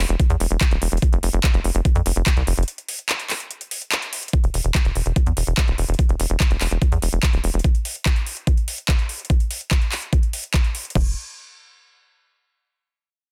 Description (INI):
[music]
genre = psychedelic trance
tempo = 145 BPM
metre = 4/4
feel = straight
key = unclear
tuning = A4 = 440 Hz
[part]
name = tight sequencer bass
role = bass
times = 0.0-7.6, 11.0-11.1 s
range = D1 to F2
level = -23 LUFS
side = equal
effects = none
[part]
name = garage drum kit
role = drums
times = 0.1-11.0 s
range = crash cymbal, handclaps, hi-hat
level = -28 LUFS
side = equal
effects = overdrive
[part]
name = electronic kick drum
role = drums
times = 0.2-11.0 s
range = none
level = -21 LUFS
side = equal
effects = overdrive
[sound]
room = little or no reverb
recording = dense, heavily limited modern master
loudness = -21 LUFS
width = mono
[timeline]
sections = 0.0-4.3 A section; 4.3-11.0 B section; 11.0-12.6 C section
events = drop 0.0-4.3; break 2.7-4.3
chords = none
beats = 0.20 0.61 | 1.02 1.44 1.85 2.27 | 2.68 3.09 3.51 3.92 | 4.33 4.75 5.16 5.58 | 5.99 6.40 6.82 7.23 | 7.64 8.06 8.47 8.88 | 9.30 9.71 10.13 10.54 | 10.95